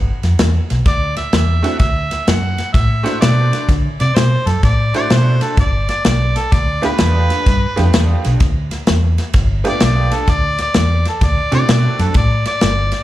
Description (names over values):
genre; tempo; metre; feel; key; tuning
electric blues shuffle; 128 BPM; 4/4; swing 65% on 8ths; D mixolydian; A4 = 441 Hz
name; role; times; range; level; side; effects
vintage muted fingered electric bass; bass; 0.0-12.9 s; G1 to D3; -15 LUFS; equal; none
natural country drum kit; drums; 0.2-13.0 s; kick drum, ride cymbal, snare drum; -17 LUFS; equal; none
mellow harmonica; melody; 0.9-13.0 s; A4 to F#5; -20 LUFS; equal; slapback echo
tack piano; accompaniment; 1.6-12.1 s; A3 to C5; -22 LUFS; right 3 dB; slapback echo
room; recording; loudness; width
small room ambience; live gig heard through the venue's PA, club reverb; -12 LUFS; side -14 dB against mid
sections
0.0-13.0 A section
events
harmonica solo 0.0-13.0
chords
0.0 N.C.; 1.8 D7; 5.6 G7; 11.2 D7